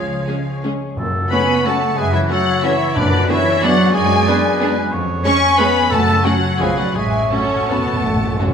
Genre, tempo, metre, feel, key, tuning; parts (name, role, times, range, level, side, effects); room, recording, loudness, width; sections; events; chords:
classical; 157-198 BPM; 3/4; rubato; F# minor; A4 = 440 Hz
warm symphonic violin section; melody; 0.0-8.5 s; D5 to C#6; -21 LUFS; left 3 dB
clear clarinet; second line; 0.0-8.5 s; D4 to C#5; -24 LUFS; left 2 dB
large flute ensemble; second line; 0.0-8.5 s; B4 to G#5; -23 LUFS; left 2 dB
warm oboe; second line; 0.0-8.5 s; G#4 to D5; -24 LUFS; right 4 dB
concert harp; arpeggios; 0.0-8.5 s; E#2 to C#6; -24 LUFS; left 3 dB
rich symphonic cello section; bass; 0.0-8.5 s; D3 to C#4; -22 LUFS; right 3 dB
rich symphonic double bass section; bass; 0.0-8.3 s; A1 to F#2; -25 LUFS; right 2 dB
rich symphonic violin section; second line; 0.3-8.5 s; C#4 to G#4; -29 LUFS; left 2 dB
rich symphonic viola section; accompaniment; 0.3-8.5 s; E#3 to C#4; -26 LUFS; right 2 dB
mellow French horn section; sustained chords; 0.3-8.5 s; E#3 to D4; -28 LUFS; equal
timpani; percussion; 1.0-3.4, 5.9-8.5 s; F#2; -25 LUFS; right 1 dB
wet scoring stage reverb, RT60 2.0 s; minimal, uncompressed stereo recording; -14 LUFS; side -7 dB against mid
0.0-8.5 A section
timpani fill 7.0-8.5
0.0 C#; 1.0 F#m; 3.0 G#m7b5/F#; 4.9 C#/E#; 5.9 F#m; 6.6 C#7/B; 7.0 F#m/A